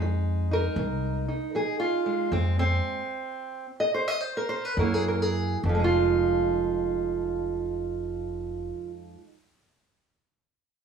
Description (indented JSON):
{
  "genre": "acoustic country blues, solo or duo",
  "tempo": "68-80 BPM",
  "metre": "4/4",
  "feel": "swing 66% on 8ths",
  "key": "F minor",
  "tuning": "A4 = 440 Hz",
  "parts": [
    { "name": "fingerpicked steel-string acoustic guitar", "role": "melody", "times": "0.0-9.3 s", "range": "F2 to Eb5", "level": "-26 LUFS", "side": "right 3 dB", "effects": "none" },
    { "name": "upright bass", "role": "bass", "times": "0.0-8.7 s", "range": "F1 to Gb2", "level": "-28 LUFS", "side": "equal", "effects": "none" }
  ],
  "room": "light reverb",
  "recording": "studio reverb",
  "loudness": "-24 LUFS",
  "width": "side -6 dB against mid",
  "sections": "0.0-5.6 A section; 5.6-9.2 B section",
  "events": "slowing down 0.0-5.6",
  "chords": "0.0 Fm7; 2.3 Fm; 4.8 Gb7; 5.6 Fm7"
}